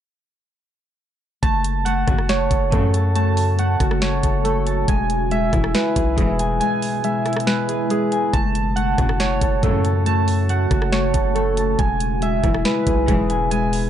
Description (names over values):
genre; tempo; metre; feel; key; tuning
hip hop, trap; 139 BPM; 4/4; half-time; F# minor; A4 = 440 Hz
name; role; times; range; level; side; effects
concert harp; accompaniment; 1.4-13.9 s; G#3 to A5; -24 LUFS; left 6 dB; low-pass filter
deep dark ambient pad; sustained chords; 2.9-13.9 s; B2 to F#4; -28 LUFS; right 1 dB; chorus, built-in reverb
soft electric-piano-like synth keys; arpeggios; 1.4-13.9 s; G#4 to A5; -23 LUFS; right 5 dB; chorus, low-pass filter, ping-pong delay
long sustained 808-style bass; bass; 1.4-13.9 s; E1 to F#2; -22 LUFS; equal; none
trap drum kit; drums; 1.4-13.8 s; hi-hat, kick drum, rim click, snare drum; -22 LUFS; equal; none
warm studio string section; stabs; 2.1-13.4 s; A1 to E3; -27 LUFS; left 2 dB; none
room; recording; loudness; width
little or no reverb; dark, warm production, nothing above 10.7 kHz; -17 LUFS; side -10 dB against mid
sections
1.4-13.9 A section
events
kick muted 6.6-8.3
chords
1.4 F#m; 4.9 E; 8.3 F#m; 11.8 E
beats
| 1.43 1.86 2.29 2.72 | 3.15 3.59 4.02 4.45 | 4.88 5.31 5.75 6.18 | 6.61 7.04 7.47 7.90 | 8.34 8.77 9.20 9.63 | 10.06 10.49 10.93 11.36 | 11.79 12.22 12.65 13.08 | 13.52